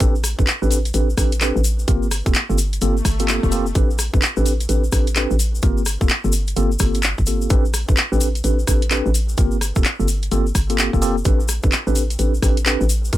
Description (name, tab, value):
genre	UK garage, two-step garage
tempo	128 BPM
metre	4/4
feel	swing 63% on 16ths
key	A phrygian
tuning	A4 = 443 Hz
part	mellow tine electric piano	stabs	0.0-13.2 s	Bb3 to B4	-23 LUFS	equal	medium stereo tremolo, dub echo
part	hollow knocking FM bass	bass	0.0-13.2 s	F1 to A1	-20 LUFS	equal	none
part	electronic kick drum	drums	0.0-13.2 s	none	-18 LUFS	equal	none
part	garage drum kit	drums	0.0-13.2 s	handclaps, hi-hat, rim click	-22 LUFS	equal	none
part	egg shaker	percussion	0.0-13.2 s	none	-28 LUFS	left 4 dB	none
part	swell	sound effects	2.9-3.8 s	none	-30 LUFS	left 2 dB	none
room	little or no reverb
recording	none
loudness	-16 LUFS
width	side -14 dB against mid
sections	0.0-13.2 A section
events	swell 2.9-3.8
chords	0.0 Am11; 1.9 Gm11; 3.8 Am11; 5.6 Gm11; 7.5 Am11; 9.4 Gm11; 11.3 Am11